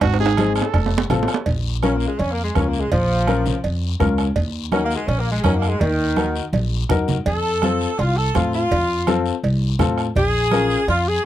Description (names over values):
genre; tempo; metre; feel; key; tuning
latin, cumbia; 166 BPM; 4/4; straight; Bb harmonic minor; A4 = 440 Hz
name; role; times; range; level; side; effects
bright trumpet; second line; 0.0-1.1 s; Gb4 to A4; -25 LUFS; right 11 dB; none
upright bass; bass; 0.0-11.2 s; F1 to A2; -22 LUFS; equal; none
bombo; percussion; 0.0-10.7 s; none; -24 LUFS; right 2 dB; none
congas; percussion; 0.0-11.1 s; none; -26 LUFS; right 2 dB; none
cowbell and timbales; percussion; 0.0-11.1 s; none; -25 LUFS; right 6 dB; none
guiro; percussion; 0.0-11.2 s; none; -35 LUFS; left 16 dB; none
warm upright piano; accompaniment; 0.2-10.8 s; C4 to Bb4; -22 LUFS; left 6 dB; none
warm saxophone section; melody; 1.8-11.2 s; Eb3 to A4; -21 LUFS; equal; none
room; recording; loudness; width
little or no reverb; dry, close 1970s-style studio recording; -17 LUFS; side -12 dB against mid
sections
0.0-1.5 A section; 1.5-11.3 B section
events
trumpet solo 0.0-1.5; drum fill 0.0-1.5, 6.5-7.3; saxophone section solo 1.5-11.3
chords
0.0 Ab; 0.7 F; 1.5 Bbm; 4.4 Ebm; 7.3 F; 10.2 Bbm